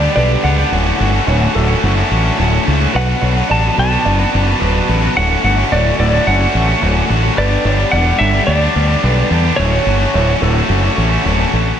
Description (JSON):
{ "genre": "post-rock", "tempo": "108 BPM", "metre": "4/4", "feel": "straight", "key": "D major", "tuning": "A4 = 442 Hz", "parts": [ { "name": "clean lap steel guitar", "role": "melody", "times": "0.0-11.5 s", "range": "C#5 to A5", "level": "-19 LUFS", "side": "equal", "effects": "slapback echo" }, { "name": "felt-muted upright piano", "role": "arpeggios", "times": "0.0-11.0 s", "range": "A4 to D5", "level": "-26 LUFS", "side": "right 4 dB", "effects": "slapback echo" }, { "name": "distorted electric guitar", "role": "riff", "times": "0.0-11.8 s", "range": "D2 to B4", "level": "-19 LUFS", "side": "left 12 dB", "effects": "overdrive" }, { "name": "overdriven electric guitar", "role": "riff", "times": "0.0-11.8 s", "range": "D2 to B4", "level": "-19 LUFS", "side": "right 10 dB", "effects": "spring reverb" }, { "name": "growling fingered electric bass", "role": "bass", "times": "0.0-11.7 s", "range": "D1 to E2", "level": "-15 LUFS", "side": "equal", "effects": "overdrive" } ], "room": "moderate lush hall reverb, RT60 2.6 s", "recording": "big arena sound", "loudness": "-11 LUFS", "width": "side -9 dB against mid", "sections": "0.0-11.8 A section", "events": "none", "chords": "0.0 Gmaj7; 0.7 Dmaj7; 2.9 Bm7; 5.2 Dmaj7; 7.4 G; 9.6 Dmaj7" }